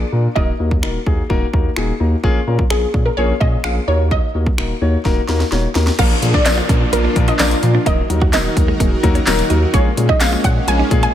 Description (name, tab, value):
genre	dance-pop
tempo	128 BPM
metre	4/4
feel	straight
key	Eb minor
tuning	A4 = 444 Hz
part	wide unison pluck	melody	0.0-11.1 s	Ab4 to Ab5	-22 LUFS	right 1 dB	analog chorus, diffuse ambient delay
part	dark baby grand piano	accompaniment	0.0-11.1 s	F3 to Db5	-21 LUFS	left 5 dB	sidechain pumping
part	saturated sub bass	bass	0.0-11.1 s	Eb1 to Bb2	-18 LUFS	equal	sidechain pumping
part	house drum kit	drums	0.4-11.1 s	crash cymbal, finger snaps, handclaps, hi-hat, kick drum, snare drum	-18 LUFS	equal	overdrive
part	supersaw pad	sustained chords	6.5-11.1 s	Eb3 to Bb4	-23 LUFS	right 1 dB	sidechain pumping
part	direct-recorded clean electric guitar	riff	6.0-11.1 s	Ab3 to Gb4	-27 LUFS	right 6 dB	wide subtle chorus
part	downlifter	sound effects	6.0-9.7 s	none	-27 LUFS	equal	none
part	tambourine	percussion	6.5-10.3 s	none	-30 LUFS	left 6 dB	none
room	light reverb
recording	none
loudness	-13 LUFS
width	side -11 dB against mid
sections	0.0-6.0 A section; 6.0-11.1 B section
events	drum fill 5.0-6.0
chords	0.4 Ebm; 2.2 Bbm7; 3.9 Ebm; 6.0 Bb; 7.9 Ebm; 9.7 Bbm7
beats	| 0.36 0.83 1.30 1.77 | 2.24 2.71 3.17 3.64 | 4.11 4.58 5.05 5.52 | 5.99 6.46 6.92 7.39 | 7.86 8.33 8.80 9.27 | 9.74 10.21 10.68